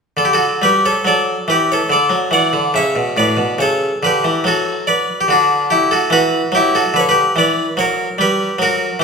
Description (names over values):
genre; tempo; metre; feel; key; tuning
classical, baroque-style suite movement for harpsichord; 71 BPM; 3/4; rubato; D major; A4 = 435 Hz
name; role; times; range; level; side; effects
harpsichord; solo; 0.2-9.0 s; A2 to F#5; -13 LUFS; equal; none
room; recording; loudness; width
wet recital hall reverb, RT60 1.5 s; minimal, uncompressed stereo recording; -13 LUFS; side -4 dB against mid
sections
0.2-9.0 A section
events
none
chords
0.2 D; 2.7 A7; 4.5 D/F#; 5.3 Bm/D; 7.8 F#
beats
| 0.17 1.05 1.90 | 2.75 3.60 4.46 | 5.29 6.12 6.94 | 7.77 8.59